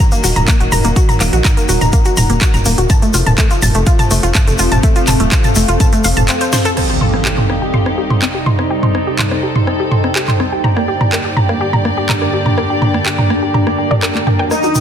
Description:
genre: melodic techno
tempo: 124 BPM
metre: 4/4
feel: straight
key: C dorian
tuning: A4 = 440 Hz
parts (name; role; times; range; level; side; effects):
- warm studio string section; sustained chords; 0.0-14.8 s; C2 to D5; -21 LUFS; equal; sidechain pumping
- analog pluck; arpeggios; 0.0-14.8 s; A3 to C6; -19 LUFS; left 1 dB; chorus, sidechain pumping, ping-pong delay
- house drum kit; drums; 0.0-14.8 s; crash cymbal, handclaps, hi-hat, rim click, snare drum, toms; -16 LUFS; right 1 dB; none
- ethereal airy pad; texture; 0.0-14.8 s; C4 to G5; -20 LUFS; equal; ensemble chorus, built-in reverb, sidechain pumping
- tube shaker; percussion; 0.1-6.7, 14.5-14.8 s; none; -23 LUFS; left 3 dB; none
- tight sequencer bass; bass; 0.2-6.3 s; Eb1 to Bb1; -15 LUFS; equal; sidechain pumping
- electronic kick drum; drums; 0.5-5.9 s; none; -12 LUFS; equal; none
- impact; sound effects; 6.8-8.7 s; none; -21 LUFS; equal; none
- soft supersaw; melody; 14.5-14.8 s; Eb4; -15 LUFS; left 2 dB; sidechain pumping
- airy dreamy lead; second line; 14.5-14.8 s; Eb5; -20 LUFS; right 1 dB; chorus, phaser, sidechain pumping
room: light reverb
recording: dense, heavily limited modern master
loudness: -11 LUFS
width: side -9 dB against mid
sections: 0.0-6.8 A section; 6.8-14.8 B section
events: drum fill 6.5; band accent 6.5; impact 6.8-8.7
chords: 0.0 Ebm; 2.9 F; 6.8 Cm; 10.6 Gm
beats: 0.00 0.48 | 0.96 1.45 1.93 2.41 | 2.90 3.38 3.87 4.35 | 4.83 5.32 5.80 6.29 | 6.77 7.25 7.74 8.22 | 8.71 9.19 9.67 10.16 | 10.64 11.12 11.61 12.09 | 12.58 13.06 13.54 14.03 | 14.51

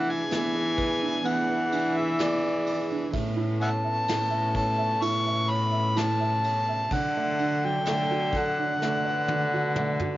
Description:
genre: acoustic folk-pop ballad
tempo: 64 BPM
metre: 4/4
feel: straight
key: D major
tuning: A4 = 441 Hz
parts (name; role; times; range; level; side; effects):
- overdriven harmonica; melody; 0.0-10.2 s; D5 to C#6; -27 LUFS; left 1 dB; cassette tape
- felt-muted upright piano; accompaniment; 0.0-10.2 s; D3 to E5; -32 LUFS; right 6 dB; cassette tape
- warm chamber string section; sustained chords; 0.0-10.2 s; D3 to B4; -36 LUFS; left 2 dB; cassette tape
- rich cello; bass; 0.0-10.2 s; A2 to E3; -28 LUFS; left 1 dB; none
- soft brush drum kit; drums; 0.3-10.2 s; kick drum, ride cymbal, snare drum, toms; -36 LUFS; left 1 dB; cassette tape
room: small room ambience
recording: home recording on cassette, nothing above 7.5 kHz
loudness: -24 LUFS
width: side -15 dB against mid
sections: 0.0-10.2 A section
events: drum fill 8.8-10.2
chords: 0.0 E7; 3.1 Aadd9; 6.9 D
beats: 0.31 1.25 2.19 | 3.13 4.08 5.02 5.96 | 6.91 7.86 8.81 9.76

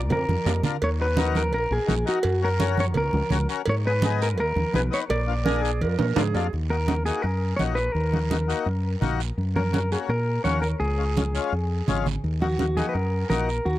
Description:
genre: latin, cumbia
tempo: 168 BPM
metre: 4/4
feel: straight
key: Eb minor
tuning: A4 = 443 Hz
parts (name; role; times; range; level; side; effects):
- fingered electric bass; bass; 0.0-13.8 s; Ab1 to Bb2; -25 LUFS; equal; none
- clean electric guitar; melody; 0.1-13.8 s; Gb4 to D5; -27 LUFS; equal; spring reverb
- congas; percussion; 0.1-13.8 s; none; -28 LUFS; right 3 dB; none
- cowbell and timbales; percussion; 0.1-6.4 s; none; -30 LUFS; right 6 dB; none
- guiro; percussion; 0.1-13.8 s; none; -40 LUFS; right 14 dB; none
- accordion; accompaniment; 0.5-13.5 s; Ab3 to Cb5; -29 LUFS; left 9 dB; none
- breathy clarinet; second line; 5.5-6.5 s; Ab4 to Bb4; -29 LUFS; right 9 dB; none
room: little or no reverb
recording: dry, close 1970s-style studio recording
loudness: -22 LUFS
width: side -14 dB against mid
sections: 0.0-6.5 A section; 6.5-13.8 B section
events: drum fill 0.3-0.8, 6.0-6.5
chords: 0.0 Bb; 0.8 Ebm; 2.2 Gb; 3.7 Abm; 5.1 Bb7; 6.5 Ebm; 9.4 Gb; 10.8 Db; 12.2 Ebm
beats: 0.11 0.47 | 0.82 1.18 1.54 1.89 | 2.25 2.61 2.96 3.32 | 3.68 4.03 4.39 4.75 | 5.10 5.46 5.81 6.17 | 6.53 6.88 7.24 7.60 | 7.96 8.31 8.67 9.03 | 9.38 9.74 10.10 10.45 | 10.81 11.17 11.52 11.88 | 12.24 12.59 12.95 13.31 | 13.66

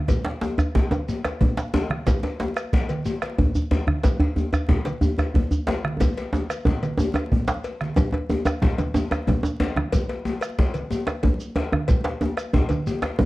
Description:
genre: west african traditional, West African drum ensemble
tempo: 122 BPM (dotted quarters)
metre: 12/8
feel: straight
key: none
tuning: none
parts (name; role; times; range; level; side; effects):
- bombo; percussion; 0.1-13.3 s; none; -24 LUFS; equal; none
- congas; percussion; 0.1-13.3 s; none; -28 LUFS; right 2 dB; none
- cowbell; percussion; 0.1-13.3 s; none; -33 LUFS; left 4 dB; none
- djembe; percussion; 0.1-13.3 s; none; -28 LUFS; left 2 dB; none
- shekere; percussion; 0.1-13.1 s; none; -34 LUFS; right 1 dB; none
- djembe; percussion; 0.2-13.3 s; none; -24 LUFS; right 1 dB; none
room: moderate studio reverb, RT60 0.6 s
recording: dark, warm production, vinyl crackle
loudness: -21 LUFS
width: side -18 dB against mid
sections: 0.0-8.0 A section; 8.0-13.3 B section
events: drum fill 6.0-8.0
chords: none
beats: | 0.09 0.59 1.08 1.57 | 2.07 2.56 3.06 3.55 | 4.04 4.53 5.03 5.52 | 6.01 6.50 6.99 7.48 | 7.97 8.46 8.95 9.44 | 9.93 10.42 10.91 11.40 | 11.89 12.38 12.86

